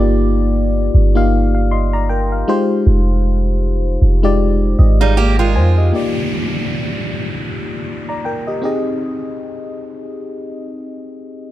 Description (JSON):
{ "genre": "contemporary R&B", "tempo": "78 BPM", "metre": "4/4", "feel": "swing 58% on 16ths", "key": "Eb major", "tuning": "A4 = 440 Hz", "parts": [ { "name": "mellow FM electric piano", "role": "accompaniment", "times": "0.0-11.5 s", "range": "Ab3 to C6", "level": "-19 LUFS", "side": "left 2 dB", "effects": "chorus" }, { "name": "clean 808-style bass", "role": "bass", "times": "0.0-5.9 s", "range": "F1 to F2", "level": "-14 LUFS", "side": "equal", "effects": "none" }, { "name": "fingerpicked steel-string acoustic guitar", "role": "arpeggios", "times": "5.0-5.9 s", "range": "G3 to G4", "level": "-19 LUFS", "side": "right 6 dB", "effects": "tape echo" }, { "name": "downlifter", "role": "sound effects", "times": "5.9-11.5 s", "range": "none", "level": "-25 LUFS", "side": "right 1 dB", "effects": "none" } ], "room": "little or no reverb", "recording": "dark, warm production", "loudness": "-14 LUFS", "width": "side -14 dB against mid", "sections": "0.0-5.9 A section; 5.9-11.5 B section", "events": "none", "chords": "0.0 Ebmaj9/G; 2.5 Fm9; 5.9 Ebmaj9; 8.6 Abmaj7" }